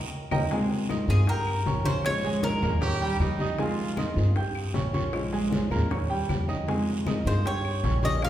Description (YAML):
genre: latin, Cuban son and guajira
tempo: 156 BPM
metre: 4/4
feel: straight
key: F minor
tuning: A4 = 439 Hz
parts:
  - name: nylon-string guitar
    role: accompaniment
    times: 0.3-8.3 s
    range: C3 to G4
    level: -34 LUFS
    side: left 2 dB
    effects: none
  - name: clear grand piano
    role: arpeggios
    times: 0.3-8.3 s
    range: G3 to G6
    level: -30 LUFS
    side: right 3 dB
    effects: none
  - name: upright bass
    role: bass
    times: 0.3-8.3 s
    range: Bb1 to G2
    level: -28 LUFS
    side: equal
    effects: none
  - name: bongos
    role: percussion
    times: 0.3-8.3 s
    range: none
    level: -37 LUFS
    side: left 3 dB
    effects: none
  - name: claves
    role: percussion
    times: 0.3-8.3 s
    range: none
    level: -46 LUFS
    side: left 3 dB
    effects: none
  - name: congas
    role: percussion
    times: 0.3-8.3 s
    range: none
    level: -32 LUFS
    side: left 1 dB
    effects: none
  - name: guiro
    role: percussion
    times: 0.3-8.3 s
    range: none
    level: -43 LUFS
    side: right 3 dB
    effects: none
  - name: Cuban tres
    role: melody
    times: 1.1-3.4, 7.3-8.3 s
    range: Ab4 to F5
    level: -30 LUFS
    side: left 1 dB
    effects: none
  - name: bright trumpet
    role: second line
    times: 2.8-4.4 s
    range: Eb4 to G4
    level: -34 LUFS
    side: right 3 dB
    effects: none
room: wet recital hall reverb, RT60 1.6 s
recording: recorded in a church or concert hall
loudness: -24 LUFS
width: side -12 dB against mid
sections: 0.5-8.3 A section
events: band accent 0.0-0.5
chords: 0.0 Eb7; 0.5 Fm7; 1.3 Gm7b5; 2.0 Bbm7; 2.8 Eb7; 3.6 Fm7; 4.4 Gm7b5; 5.1 Bbm7; 5.9 Eb7; 6.7 Fm7; 7.5 Gm7b5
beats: 0.12 | 0.51 0.89 1.28 1.66 | 2.05 2.43 2.82 3.21 | 3.59 3.98 4.36 4.75 | 5.13 5.52 5.91 6.29 | 6.68 7.07 7.45 7.84 | 8.22